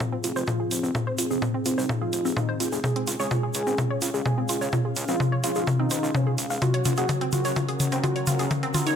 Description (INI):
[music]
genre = melodic techno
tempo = 127 BPM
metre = 4/4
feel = straight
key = unclear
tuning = A4 = 439 Hz
[part]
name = wide unison lead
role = melody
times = 0.0-9.0 s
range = C4 to Ab4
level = -30 LUFS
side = right 1 dB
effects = sidechain pumping, digital delay
[part]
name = dark analog pad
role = sustained chords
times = 0.0-9.0 s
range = C4 to F5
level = -34 LUFS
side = left 2 dB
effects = chorus, vintage 12-bit sampler grit, sidechain pumping
[part]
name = electronic kick drum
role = drums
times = 0.0-8.6 s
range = none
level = -33 LUFS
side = equal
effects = high-pass filter on kick, high-pass filter on room
[part]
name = house drum kit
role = drums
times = 0.0-9.0 s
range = hi-hat, toms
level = -26 LUFS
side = left 2 dB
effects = none
[part]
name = egg shaker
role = percussion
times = 0.0-9.0 s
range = none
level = -34 LUFS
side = right 2 dB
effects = none
[part]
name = analog pluck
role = arpeggios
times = 0.1-8.9 s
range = C4 to F5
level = -30 LUFS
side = right 1 dB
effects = chorus, sidechain pumping, digital delay
[part]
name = fat analog bass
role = bass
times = 0.2-8.9 s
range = F1 to Db2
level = -34 LUFS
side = equal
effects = tube saturation, sidechain pumping, high-pass filter
[sound]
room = light reverb, digital ambience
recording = none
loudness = -23 LUFS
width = side -8 dB against mid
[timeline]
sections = 0.0-9.0 A section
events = build-up 0.0-9.0; drum fill 0.0-9.0; filter sweep on synth arpeggio sound 0.0-9.0; filter sweep on analog synth lead 0.0-9.0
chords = 0.0 Fm; 2.8 Db; 6.6 Gb